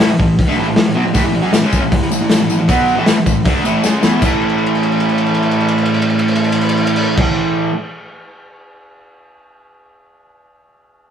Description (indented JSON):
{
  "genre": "garage rock duo or trio",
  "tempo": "157 BPM",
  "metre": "4/4",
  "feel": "straight",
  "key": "A major",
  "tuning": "A4 = 438 Hz",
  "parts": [
    { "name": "fuzz guitar", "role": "riff", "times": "0.0-7.7 s", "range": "A2 to E4", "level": "-14 LUFS", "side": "right 1 dB", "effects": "distortion" },
    { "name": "crunchy breakbeat drum kit", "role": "drums", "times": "0.0-8.7 s", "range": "crash cymbal, hi-hat, kick drum, ride cymbal, snare drum", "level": "-16 LUFS", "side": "left 1 dB", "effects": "none" },
    { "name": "tambourine", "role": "percussion", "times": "1.1-7.2 s", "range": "none", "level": "-30 LUFS", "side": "left 6 dB", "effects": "none" }
  ],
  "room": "moderate stone room reverb, RT60 1.3 s",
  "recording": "rough rehearsal-room recording",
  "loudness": "-12 LUFS",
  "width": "side -8 dB against mid",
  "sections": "0.0-4.2 A section; 4.2-7.3 B section",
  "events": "drum fill 3.8-4.2, 4.4-7.2",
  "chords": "0.0 A; 4.2 A5"
}